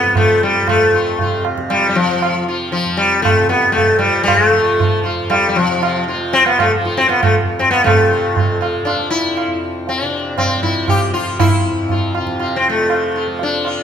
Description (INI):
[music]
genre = indian classical, Hindustani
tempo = 118 BPM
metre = 7/4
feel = straight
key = F raga yaman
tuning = A4 = 438 Hz
[part]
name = sitar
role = melody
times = 0.0-13.8 s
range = F3 to G4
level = -14 LUFS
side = left 2 dB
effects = none
[part]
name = tanpura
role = drone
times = 0.0-13.8 s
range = F2 to F3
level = -24 LUFS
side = right 1 dB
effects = none
[part]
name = tabla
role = percussion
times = 0.2-13.8 s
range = none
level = -19 LUFS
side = right 3 dB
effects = none
[sound]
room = wet recital hall reverb, RT60 1.8 s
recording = minimal, uncompressed stereo recording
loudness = -13 LUFS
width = side -8 dB against mid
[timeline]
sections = 0.0-7.9 A section; 7.9-13.8 B section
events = speeding up 0.0-13.8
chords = none